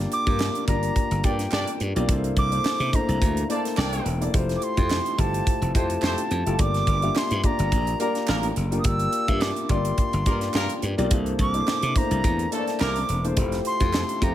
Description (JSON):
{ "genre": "polished 1980s jazz-funk pop", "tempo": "106 BPM", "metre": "4/4", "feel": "swing 54% on 16ths", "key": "unclear", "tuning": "A4 = 439 Hz", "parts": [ { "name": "dark concert grand piano", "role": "accompaniment", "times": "0.0-14.3 s", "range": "A3 to E5", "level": "-28 LUFS", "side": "left 3 dB", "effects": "wide subtle chorus" }, { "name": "glassy slap bass", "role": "bass", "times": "0.0-14.3 s", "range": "E1 to C3", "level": "-26 LUFS", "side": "equal", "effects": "none" }, { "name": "crisp fusion drum kit", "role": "drums", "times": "0.0-14.3 s", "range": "hi-hat, kick drum, snare drum", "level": "-26 LUFS", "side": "equal", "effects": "gated reverb" }, { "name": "reedy concert flute", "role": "melody", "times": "0.1-14.3 s", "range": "G5 to E6", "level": "-28 LUFS", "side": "right 1 dB", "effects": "none" }, { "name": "group handclap", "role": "percussion", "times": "0.4-14.1 s", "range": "none", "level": "-38 LUFS", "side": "right 9 dB", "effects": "none" }, { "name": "warm horn section", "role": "second line", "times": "1.2-13.0 s", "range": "E3 to D5", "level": "-31 LUFS", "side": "right 2 dB", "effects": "none" } ], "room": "studio reverb", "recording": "none", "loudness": "-21 LUFS", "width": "side -12 dB against mid", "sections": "0.0-14.3 A section", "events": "none", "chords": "0.0 Gm7; 2.1 C13; 4.3 Fmaj9; 6.6 Gm7; 11.1 C13; 13.4 Fmaj9" }